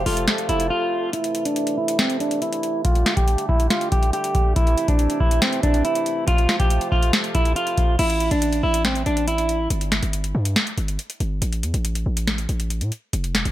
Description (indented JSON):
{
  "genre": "hip hop, trap",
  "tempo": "140 BPM",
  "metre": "4/4",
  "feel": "half-time",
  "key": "A minor",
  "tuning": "A4 = 440 Hz",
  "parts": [
    { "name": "electric guitar at the edge of break-up", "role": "melody", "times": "0.0-9.7 s", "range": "C4 to G4", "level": "-22 LUFS", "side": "right 1 dB", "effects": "low-pass filter, tape echo" },
    { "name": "breathy flute-like synth lead", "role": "second line", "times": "0.0-1.1 s", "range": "A4", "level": "-32 LUFS", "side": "left 4 dB", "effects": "chorus, tape echo" },
    { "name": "pedal harmonium", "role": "sustained chords", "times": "0.0-8.0 s", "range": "C3 to G4", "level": "-28 LUFS", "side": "right 3 dB", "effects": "stereo widening, low-pass filter" },
    { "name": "hard-hitting 808-style bass", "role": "bass", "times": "0.0-0.7, 8.0-13.5 s", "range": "F1 to A2", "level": "-23 LUFS", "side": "equal", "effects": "none" },
    { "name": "booming analog drum machine", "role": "drums", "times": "0.1-13.5 s", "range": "crash cymbal, hi-hat, kick drum, snare drum", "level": "-21 LUFS", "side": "equal", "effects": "none" }
  ],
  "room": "light reverb, digital ambience",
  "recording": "echo-heavy mix",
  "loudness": "-19 LUFS",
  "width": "side -14 dB against mid",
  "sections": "0.0-1.1 A section; 1.1-8.0 B section; 8.0-13.5 C section",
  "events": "break 0.7-1.1, 9.7-13.5; filter sweep 1.1-8.0",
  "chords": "0.0 F; 1.1 Am; 2.8 Gsus2; 4.6 Am; 6.3 F; 8.0 A5; 9.7 N.C.; 11.4 A5"
}